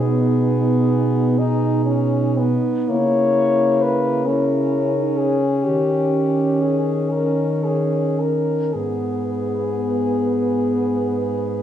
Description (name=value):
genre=classical, lyrical piece for horn quartet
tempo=35-45 BPM (dotted quarters)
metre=12/8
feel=rubato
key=G# minor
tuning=A4 = 439 Hz
part: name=clear French horn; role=melody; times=0.0-11.6 s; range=G4 to C#5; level=-23 LUFS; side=left 4 dB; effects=none
part: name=mellow French horn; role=second line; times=0.0-11.6 s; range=B3 to E4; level=-25 LUFS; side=right 8 dB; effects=none
part: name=warm French horn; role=accompaniment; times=0.0-11.6 s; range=A#3 to D#4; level=-22 LUFS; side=left 2 dB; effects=none
part: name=mellow French horn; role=bass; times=0.0-11.6 s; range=G#2 to D#3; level=-23 LUFS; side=right 1 dB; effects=none
room=moderate scoring stage reverb, RT60 1.6 s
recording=studio reverb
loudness=-17 LUFS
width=side -10 dB against mid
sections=0.0-11.6 A section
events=none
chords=0.0 G#m/B; 2.9 A#dim/C#; 5.6 D#7; 8.7 G#m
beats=0.01 1.39 | 2.89 4.26 5.64 7.13 | 8.73 10.42